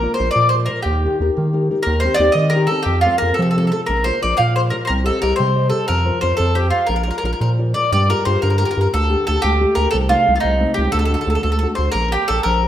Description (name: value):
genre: italian folk, Italian serenade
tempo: 119 BPM (dotted quarters)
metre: 6/8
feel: rubato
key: Bb major, G minor from 7.9 s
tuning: A4 = 440 Hz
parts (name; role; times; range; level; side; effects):
- mandolin; melody; 0.0-12.7 s; Eb4 to G5; -18 LUFS; equal; slapback echo
- nylon-string guitar; accompaniment; 0.0-12.7 s; C3 to Eb5; -23 LUFS; left 3 dB; none
- round analog bass; bass; 0.0-12.7 s; Bb1 to F3; -19 LUFS; right 1 dB; none
room: wet recital hall reverb, RT60 1.4 s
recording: none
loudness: -15 LUFS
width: side -11 dB against mid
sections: 0.0-7.9 A section; 7.9-12.7 B section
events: none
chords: 0.0 Bb; 0.9 Eb; 1.9 Cm/Eb; 2.9 F; 3.9 Bb; 4.9 Cm; 5.9 Fsus4; 6.4 F; 6.9 Bb; 7.9 Gm7; 8.9 Dsus4; 9.9 Adim/C; 10.9 D; 11.9 Bbmaj7